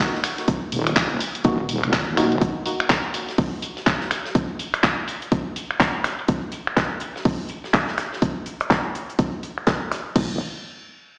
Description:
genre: bass house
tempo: 124 BPM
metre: 4/4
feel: swing 60% on 16ths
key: Eb minor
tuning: A4 = 441 Hz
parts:
  - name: electronic kick drum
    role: drums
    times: 0.0-10.3 s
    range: none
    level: -24 LUFS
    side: equal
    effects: none
  - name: house drum kit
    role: drums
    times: 0.0-10.3 s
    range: crash cymbal, finger snaps, handclaps, hi-hat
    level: -26 LUFS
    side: equal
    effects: low-pass filter on hats, low-pass filter on snare, low-pass filter on cymbals, low-pass filter on room
  - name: modern studio drum kit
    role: drums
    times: 0.0-10.1 s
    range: hi-hat, snare drum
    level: -36 LUFS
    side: equal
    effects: sidechain pumping on hats, high-pass filter on hats, high-pass filter on snare, high-pass filter on room
  - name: wobble bass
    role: bass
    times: 0.7-2.4, 10.2-10.4 s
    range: Eb1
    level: -27 LUFS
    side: equal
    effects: chorus, tube saturation, sidechain pumping
  - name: percussive organ stab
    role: stabs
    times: 1.4-2.4 s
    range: Bb3 to Gb4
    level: -29 LUFS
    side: equal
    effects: lush chorus, sidechain pumping, digital delay
room: moderate lush hall reverb, RT60 1.7 s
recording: played on a big sound system in a bare room, stone room reverb, small speaker sound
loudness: -23 LUFS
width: mono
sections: 0.0-10.2 A section; 10.2-11.2 B section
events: filter sweep on drum 0.0-10.2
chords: 0.0 Ebm; 10.2 N.C.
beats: 0.00 | 0.48 0.96 1.45 1.93 | 2.42 2.90 3.38 3.87 | 4.35 4.83 5.32 5.80 | 6.29 6.77 7.25 7.74 | 8.22 8.71 9.19 9.67 | 10.16

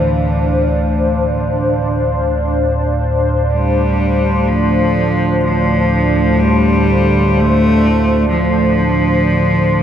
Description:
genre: dark ambient drone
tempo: free time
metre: none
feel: none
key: D minor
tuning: A4 = 440 Hz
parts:
  - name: clear cello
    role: melody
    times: 0.0-9.8 s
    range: E3 to A3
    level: -17 LUFS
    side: equal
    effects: analog delay
  - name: sweeping resonant pad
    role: sustained chords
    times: 0.0-9.8 s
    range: D4 to F5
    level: -17 LUFS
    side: equal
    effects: chorus
  - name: analog drone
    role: drone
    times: 0.0-9.8 s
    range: D2 to A2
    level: -15 LUFS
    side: equal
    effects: chorus
  - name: bronze singing bowl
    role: texture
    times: 0.0-9.8 s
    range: none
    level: barely audible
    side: none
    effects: none
room: wet spring reverb, RT60 2.4 s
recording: echo-heavy mix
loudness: -12 LUFS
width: side -9 dB against mid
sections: 0.0-9.8 A section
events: none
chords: 0.0 Dm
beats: free time

